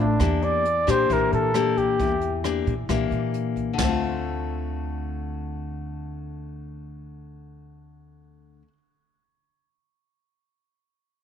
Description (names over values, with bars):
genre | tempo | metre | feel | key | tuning
bossa nova | 134 BPM | 4/4 | straight | D minor | A4 = 441 Hz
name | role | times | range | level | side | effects
warm flugelhorn | melody | 0.0-2.4 s | D4 to D5 | -24 LUFS | right 1 dB | tape echo
nylon-string guitar | accompaniment | 0.0-8.8 s | A2 to G4 | -27 LUFS | left 10 dB | none
upright bass | bass | 0.0-8.6 s | A1 to Bb2 | -29 LUFS | right 2 dB | none
jazz brush drum kit | drums | 0.2-3.9 s | hi-hat, kick drum, ride cymbal, rim click, snare drum | -32 LUFS | right 2 dB | none
room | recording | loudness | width
light reverb, small room ambience | 1960s-style stereo | -22 LUFS | side -8 dB against mid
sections
0.0-3.8 A section; 3.8-7.4 B section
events
flugelhorn solo 0.0-3.8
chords
0.2 Em7b5; 3.8 Dm7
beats
| 0.20 0.65 1.09 1.54 | 1.99 2.44 2.89 3.33 | 3.78 4.23 4.68 5.13 | 5.58 6.03 6.47 6.92